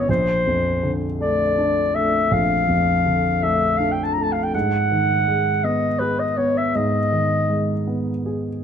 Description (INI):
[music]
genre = classical, impressionist duo for clarinet and grand piano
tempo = 54 BPM (dotted quarters)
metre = 12/8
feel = rubato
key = unclear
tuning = A4 = 440 Hz
[part]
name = mellow clarinet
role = melody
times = 0.0-7.9 s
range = B4 to A#5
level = -20 LUFS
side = left 2 dB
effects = none
[part]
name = dark concert grand piano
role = accompaniment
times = 0.0-8.6 s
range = A#1 to G#4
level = -21 LUFS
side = equal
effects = none
[sound]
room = moderate recital hall reverb, RT60 1.5 s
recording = close, detailed microphones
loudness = -18 LUFS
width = side -8 dB against mid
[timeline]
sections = 0.0-8.6 A section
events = none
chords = 0.1 A#maj7; 4.5 G#m7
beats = | 0.08 1.20 2.30 3.41 | 4.54 5.63 6.74 7.87